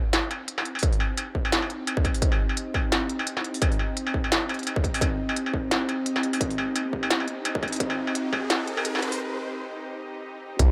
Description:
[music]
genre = half-time drum and bass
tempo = 172 BPM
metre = 4/4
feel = swing 56% on 16ths, half-time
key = C minor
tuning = A4 = 442 Hz
[part]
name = bowed-like drone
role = sustained chords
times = 0.3-10.7 s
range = C4 to F5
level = -34 LUFS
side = equal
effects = built-in reverb, sidechain pumping
[part]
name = industrial drum kit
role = drums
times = 0.1-10.7 s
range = hi-hat, snare drum, struck metal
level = -29 LUFS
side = equal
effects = none
[part]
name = electronic kick drum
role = drums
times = 0.8-8.4, 10.6-10.7 s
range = none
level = -28 LUFS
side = equal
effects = distortion
[part]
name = riser and impact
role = sound effects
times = 6.7-10.7 s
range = none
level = -39 LUFS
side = equal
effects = none
[part]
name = phased detuned saw bass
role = bass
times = 10.6-10.7 s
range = C2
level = -20 LUFS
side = equal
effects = phaser
[sound]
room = light reverb, digital ambience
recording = high-pass filter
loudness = -26 LUFS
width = mono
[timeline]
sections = 0.0-10.6 A section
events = build-up 0.0-10.6; riser 6.7-9.2; break 9.2-10.6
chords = 0.0 Cm

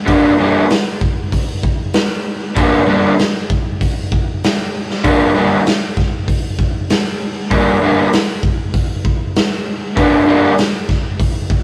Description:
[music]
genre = garage rock duo or trio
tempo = 97 BPM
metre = 4/4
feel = straight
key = G minor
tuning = A4 = 441 Hz
[part]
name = crunchy overdriven guitar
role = riff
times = 0.1-10.5 s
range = G2 to D4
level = -14 LUFS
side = equal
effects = none
[part]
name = raw garage drum kit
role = drums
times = 0.1-11.6 s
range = hi-hat, kick drum, snare drum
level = -18 LUFS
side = equal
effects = none
[sound]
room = moderate studio reverb, RT60 0.5 s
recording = rough rehearsal-room recording, warm saturation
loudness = -15 LUFS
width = mono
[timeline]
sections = 0.0-11.6 A section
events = none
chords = 0.0 Gm

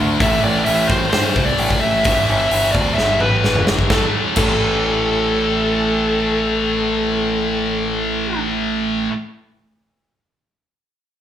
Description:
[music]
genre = hard rock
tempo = 129 BPM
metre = 4/4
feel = straight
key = unclear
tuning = A4 = 440 Hz
[part]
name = heavy high-gain guitar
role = riff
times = 0.0-9.1 s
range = E2 to D4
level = -24 LUFS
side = equal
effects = distortion
[part]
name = overdriven semi-hollow guitar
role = riff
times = 0.0-9.1 s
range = E2 to D4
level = -24 LUFS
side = right 5 dB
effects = none
[part]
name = scooped high-gain guitar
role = riff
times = 0.0-9.1 s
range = E2 to D4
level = -23 LUFS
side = left 8 dB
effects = distortion
[part]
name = growling fingered electric bass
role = bass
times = 0.0-9.1 s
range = G1 to G2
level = -25 LUFS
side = equal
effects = overdrive
[part]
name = dark smooth lead guitar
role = melody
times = 0.2-8.4 s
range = A4 to E5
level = -20 LUFS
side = equal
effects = overdrive
[part]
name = big rock drum kit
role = drums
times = 0.2-4.5 s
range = crash cymbal, hi-hat, kick drum, snare drum, toms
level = -20 LUFS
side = equal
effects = none
[sound]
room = wet large studio reverb, RT60 0.8 s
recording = band playing live in one room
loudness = -15 LUFS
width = side -10 dB against mid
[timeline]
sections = 0.0-3.9 A section; 3.9-7.6 B section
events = drum fill 3.0-3.9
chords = 0.2 Am; 2.1 Em/G; 3.9 A5

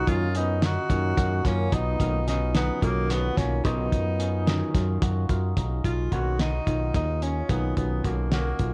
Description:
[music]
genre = progressive instrumental, band music in an uneven meter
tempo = 218 BPM (eighths)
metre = 7/8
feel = straight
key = B lydian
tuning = A4 = 441 Hz
[part]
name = mellow tenor saxophone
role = melody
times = 0.0-8.7 s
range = A#3 to F#4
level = -33 LUFS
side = equal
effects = none
[part]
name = clear trombone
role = second line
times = 0.0-5.0 s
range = F#3 to D#4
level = -38 LUFS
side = equal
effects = none
[part]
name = hammered dulcimer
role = arpeggios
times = 0.0-8.7 s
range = C#4 to F#4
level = -36 LUFS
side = equal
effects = none
[part]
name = fingered electric bass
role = bass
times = 0.0-8.7 s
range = B1 to F#2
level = -29 LUFS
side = equal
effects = none
[part]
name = vintage hollow-body jazz guitar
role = accompaniment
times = 0.1-8.5 s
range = D#3 to A#4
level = -36 LUFS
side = equal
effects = none
[part]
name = cloth-damped thuddy drum kit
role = drums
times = 0.1-8.7 s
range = hi-hat, kick drum, snare drum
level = -30 LUFS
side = equal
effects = none
[sound]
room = little or no reverb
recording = dark, warm production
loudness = -25 LUFS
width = mono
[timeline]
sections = 0.0-5.6 A section; 5.6-8.7 B section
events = none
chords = 0.0 Bmaj7

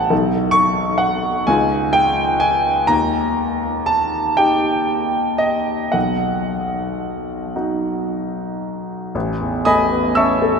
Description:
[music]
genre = classical, impressionist solo piano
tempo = 36-46 BPM (dotted quarters)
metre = 6/8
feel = rubato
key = A lydian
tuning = A4 = 440 Hz
[part]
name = warm grand piano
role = solo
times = 0.0-10.6 s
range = A1 to E6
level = -16 LUFS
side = equal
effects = none
[sound]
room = wet cathedral reverb, RT60 5.5 s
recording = in a vast, echoing space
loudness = -16 LUFS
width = side -5 dB against mid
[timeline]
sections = 0.0-9.1 A section; 9.1-10.6 B section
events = none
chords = 0.1 B7; 1.5 Dbadd9; 2.9 D#; 5.9 B; 9.1 Aadd9

